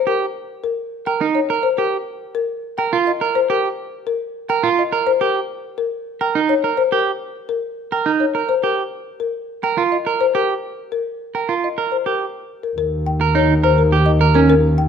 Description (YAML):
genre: classical, minimalist pattern music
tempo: 105 BPM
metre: 3/4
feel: straight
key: Eb mixolydian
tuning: A4 = 437 Hz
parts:
  - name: folk marimba with medium mallets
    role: melody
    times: 0.0-14.9 s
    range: Bb4 to G5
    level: -21 LUFS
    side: left 8 dB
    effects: none
  - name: clean electric guitar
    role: arpeggios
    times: 0.1-14.5 s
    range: Db4 to Bb4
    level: -18 LUFS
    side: right 7 dB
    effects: none
  - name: warm double bass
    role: bass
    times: 12.8-14.9 s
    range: Eb2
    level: -16 LUFS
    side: equal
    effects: none
room: moderate recital hall reverb, RT60 1.4 s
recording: close, detailed microphones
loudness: -17 LUFS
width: side -7 dB against mid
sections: 0.0-12.8 A section; 12.8-14.9 A section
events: none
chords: 0.0 Eb; 2.5 C7(no3) (rootless); 5.9 Eb; 9.3 C7(no3) (rootless); 12.8 Eb5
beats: 0.21 | 0.78 1.35 1.92 | 2.49 3.06 3.63 | 4.21 4.78 5.35 | 5.92 6.49 7.06 | 7.63 8.21 8.78 | 9.35 9.92 10.49 | 11.06 11.63 12.21 | 12.78 13.35 13.92 | 14.49